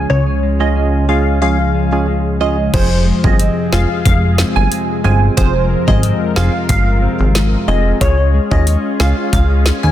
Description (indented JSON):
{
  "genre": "dancehall",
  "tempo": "91 BPM",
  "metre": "4/4",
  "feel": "straight",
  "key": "F minor",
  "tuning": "A4 = 440 Hz",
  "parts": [
    { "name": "warm analog pad", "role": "sustained chords", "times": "0.0-9.9 s", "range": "C3 to Bb4", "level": "-23 LUFS", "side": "equal", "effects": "chorus, low-pass filter" },
    { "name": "mellow electric guitar", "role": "arpeggios", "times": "0.0-9.9 s", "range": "F2 to F4", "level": "-21 LUFS", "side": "left 3 dB", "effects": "low-pass filter" },
    { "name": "plucky analog bass", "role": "bass", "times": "0.0-9.9 s", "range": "F1 to Eb2", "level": "-14 LUFS", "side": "equal", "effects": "none" },
    { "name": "glassy wavetable pluck", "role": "melody", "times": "0.1-9.9 s", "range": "C5 to Ab5", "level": "-20 LUFS", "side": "equal", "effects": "chorus, low-pass filter, tape echo" },
    { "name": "percussive organ stab", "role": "accompaniment", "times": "0.6-9.2 s", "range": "Ab3 to Ab4", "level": "-22 LUFS", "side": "right 4 dB", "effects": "chorus, low-pass filter" },
    { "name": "island pop drum kit", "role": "drums", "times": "2.7-9.8 s", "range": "crash cymbal, hi-hat, kick drum, snare drum", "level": "-17 LUFS", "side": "equal", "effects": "none" }
  ],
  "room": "light reverb, digital ambience",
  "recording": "dense, heavily limited modern master",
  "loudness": "-12 LUFS",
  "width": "side -12 dB against mid",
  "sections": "0.0-2.7 A section; 2.7-9.9 B section",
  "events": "none",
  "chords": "0.0 Db; 2.7 Fm; 8.0 Db",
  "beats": "| 0.10 0.76 1.42 2.08 | 2.74 3.40 4.05 4.71 | 5.37 6.03 6.69 7.35 | 8.01 8.67 9.33"
}